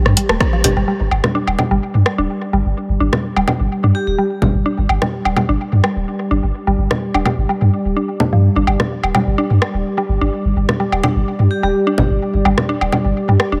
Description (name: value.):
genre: minimal techno.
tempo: 127 BPM.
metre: 4/4.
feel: straight.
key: unclear.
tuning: A4 = 441 Hz.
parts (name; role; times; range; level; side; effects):
warbly tape-like pad; texture; 0.0-13.6 s; G3 to D6; -25 LUFS; equal; chorus, built-in reverb, sidechain pumping.
punchy sub bass; bass; 0.1-13.6 s; D1 to G2; -19 LUFS; equal; tube saturation, sidechain pumping.
punchy analog drum machine; drums; 0.1-0.7 s; hi-hat, rim click; -22 LUFS; equal; low-pass filter on snare, low-pass filter on hats, low-pass filter on room.
mallet-like synth pluck; riff; 0.2-13.6 s; F3 to G4; -24 LUFS; equal; chorus, sidechain pumping, digital delay.
electronic rim click, congas and woodblock; percussion; 0.3-13.5 s; none; -21 LUFS; equal; overdrive, tape echo.
electronic kick drum; drums; 0.4-0.5 s; none; -20 LUFS; equal; none.
vibraphone with medium hard mallets; melody; 3.9-4.1, 11.5-11.7 s; G4; -24 LUFS; equal; tape echo.
room: light reverb.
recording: none.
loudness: -17 LUFS.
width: mono.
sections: 0.9-13.6 A section.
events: band accent 0.4; filter sweep on synth arpeggio sound 0.9-13.6.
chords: 0.0 G5.